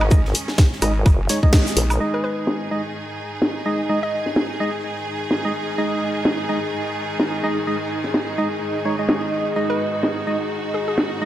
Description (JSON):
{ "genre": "bass house", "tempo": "127 BPM", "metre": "4/4", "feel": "swing 57% on 16ths", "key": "unclear", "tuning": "A4 = 440 Hz", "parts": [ { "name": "bright studio string section", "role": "sustained chords", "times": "0.0-11.3 s", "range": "G#2 to G#4", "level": "-28 LUFS", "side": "right 1 dB", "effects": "sidechain pumping" }, { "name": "percussive organ stab", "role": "stabs", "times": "0.0-11.3 s", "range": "G#3 to D#5", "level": "-24 LUFS", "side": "right 1 dB", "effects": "chorus, sidechain pumping, digital delay" }, { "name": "vowel-sweep wobble bass", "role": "bass", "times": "0.0-2.0 s", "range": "F#1 to A#1", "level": "-20 LUFS", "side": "equal", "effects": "chorus, sidechain pumping" }, { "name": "garage drum kit", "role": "drums", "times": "0.0-11.1 s", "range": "crash cymbal, hi-hat, snare drum, woodblock", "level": "-22 LUFS", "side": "equal", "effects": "low-pass filter on hats, studio reverb, low-pass filter on snare, low-pass filter on perc, low-pass filter on cymbals" }, { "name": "electronic kick drum", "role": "drums", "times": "0.1-1.6 s", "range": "none", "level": "-14 LUFS", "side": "equal", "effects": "studio reverb" }, { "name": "shaker and snare drum", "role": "drums", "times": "0.1-2.0 s", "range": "none", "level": "-33 LUFS", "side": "equal", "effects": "sidechain pumping on hats, high-pass filter on hats, studio reverb, high-pass filter on snare, sidechain pumping on perc, high-pass filter on perc, high-pass filter on room" }, { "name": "airy breathy pad", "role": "texture", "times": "2.0-11.3 s", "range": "D#4 to D#5", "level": "-28 LUFS", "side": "equal", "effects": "chorus, sidechain pumping" }, { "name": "hollow square pluck", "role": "melody", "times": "2.1-4.5, 9.7-11.1 s", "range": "G#4 to D#5", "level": "-27 LUFS", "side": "left 1 dB", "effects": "chorus, digital delay" } ], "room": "moderate digital room reverb, RT60 1.2 s, small room ambience", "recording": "none", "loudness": "-19 LUFS", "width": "side -12 dB against mid", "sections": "0.0-2.0 A section; 2.0-11.3 B section", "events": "band accent 1.5", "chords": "0.0 G#5" }